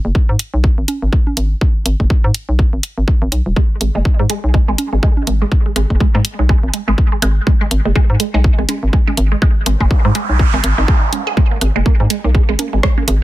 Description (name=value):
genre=minimal techno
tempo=123 BPM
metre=4/4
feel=swing 58% on 16ths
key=G# minor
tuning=A4 = 440 Hz
part: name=hollow knocking FM bass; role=bass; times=0.0-13.2 s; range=D#1 to G#2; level=-15 LUFS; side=equal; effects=sidechain pumping
part: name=electronic kick drum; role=drums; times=0.1-12.9 s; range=none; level=-13 LUFS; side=equal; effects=none
part: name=house drum kit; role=drums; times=0.4-13.2 s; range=hi-hat, rim click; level=-20 LUFS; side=equal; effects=soft clipping on snare
part: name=congas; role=percussion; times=0.9-1.3, 4.8-5.3, 8.7-13.1 s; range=none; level=-25 LUFS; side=right 3 dB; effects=dub echo
part: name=resonant blip pluck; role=riff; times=3.6-13.1 s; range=G#3 to G#4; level=-21 LUFS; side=right 3 dB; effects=phaser, sidechain pumping, dub echo
part: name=noise sweep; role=sound effects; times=9.7-11.4 s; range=none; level=-22 LUFS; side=right 5 dB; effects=none
room=little or no reverb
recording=dense, heavily limited modern master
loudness=-12 LUFS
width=side -16 dB against mid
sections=0.0-13.2 A section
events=noise sweep 9.7-11.4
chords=0.0 G#5